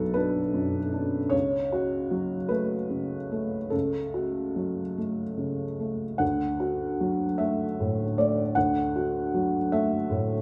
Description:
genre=neoclassical minimalist piano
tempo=50 BPM (dotted quarters)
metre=6/8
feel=uneven beats, rubato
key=unclear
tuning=A4 = 440 Hz
part: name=felt-muted upright piano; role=solo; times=0.0-10.4 s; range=B1 to F#5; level=-28 LUFS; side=equal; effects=none
room=wet recital hall reverb, RT60 1.5 s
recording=recorded in a church or concert hall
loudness=-28 LUFS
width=mono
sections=0.0-10.4 A section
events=none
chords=0.0 Bm; 1.3 F#m/C#; 6.2 D

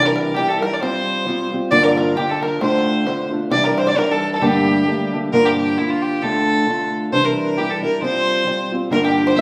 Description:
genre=celtic folk, Celtic polka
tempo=133 BPM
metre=2/4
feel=swing 57% on 8ths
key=G dorian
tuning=A4 = 440 Hz
part: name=clear fiddle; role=melody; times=0.0-9.4 s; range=E4 to E5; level=-22 LUFS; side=equal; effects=none
part: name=bluegrass banjo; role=second line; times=0.0-5.1, 8.9-9.4 s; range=G4 to D5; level=-25 LUFS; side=equal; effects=none
part: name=fingerpicked steel-string acoustic guitar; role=accompaniment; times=0.0-9.4 s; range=D2 to F4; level=-22 LUFS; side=equal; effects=none
room=wet large studio reverb, RT60 1.2 s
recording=band playing live in one room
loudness=-18 LUFS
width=mono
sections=0.0-5.3 A section; 5.3-9.4 A section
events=none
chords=0.0 Cadd9; 0.8 Fsus2; 1.7 Gm7; 2.6 Dm; 3.5 Cadd9; 4.4 Gmadd9; 5.3 Gm7; 6.2 Dm; 7.1 Cadd9; 8.0 Fsus2

